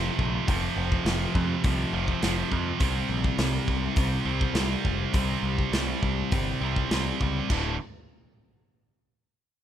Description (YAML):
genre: heavy metal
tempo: 102 BPM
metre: 4/4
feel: straight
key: D minor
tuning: A4 = 440 Hz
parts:
  - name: distorted electric guitar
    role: riff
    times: 0.0-7.7 s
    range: D2 to C4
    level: -32 LUFS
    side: left 10 dB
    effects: distortion
  - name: scooped high-gain guitar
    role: riff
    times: 0.0-7.7 s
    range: D2 to C4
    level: -29 LUFS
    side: right 9 dB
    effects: distortion
  - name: growling picked electric bass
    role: bass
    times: 0.0-7.8 s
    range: D1 to F2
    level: -30 LUFS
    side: equal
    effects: overdrive
  - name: big rock drum kit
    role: drums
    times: 0.2-7.6 s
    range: crash cymbal, hi-hat, kick drum, snare drum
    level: -29 LUFS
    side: equal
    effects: none
room: little or no reverb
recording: rough home demo mix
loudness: -24 LUFS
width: side -10 dB against mid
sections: 0.0-7.5 A section; 7.5-9.6 B section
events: none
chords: 0.0 F5; 2.8 C5; 7.5 D5